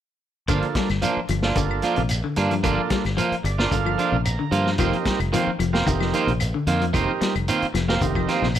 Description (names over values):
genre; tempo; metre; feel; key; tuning
afrobeat; 111 BPM; 4/4; straight; G minor; A4 = 439 Hz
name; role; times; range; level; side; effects
combo organ; accompaniment; 0.5-8.5 s; Bb3 to Bb5; -28 LUFS; right 8 dB; none
clean electric guitar; arpeggios; 0.5-8.6 s; C3 to G3; -28 LUFS; left 7 dB; lush chorus
electric guitar at the edge of break-up; stabs; 0.5-8.5 s; Eb3 to F4; -25 LUFS; right 4 dB; warbly pitch drift
fingered electric bass; bass; 0.5-8.6 s; F1 to G2; -25 LUFS; equal; none
vintage drum kit; drums; 0.5-8.6 s; hi-hat, kick drum, snare drum; -28 LUFS; equal; none
claves; percussion; 0.5-8.6 s; none; -34 LUFS; left 15 dB; none
shekere; percussion; 0.5-8.6 s; none; -32 LUFS; right 2 dB; none
room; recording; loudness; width
light reverb, small room ambience; none; -20 LUFS; side -10 dB against mid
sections
0.5-8.6 A section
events
transistor combo organ fill 3.2-4.8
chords
0.5 Gm7; 4.8 F7sus4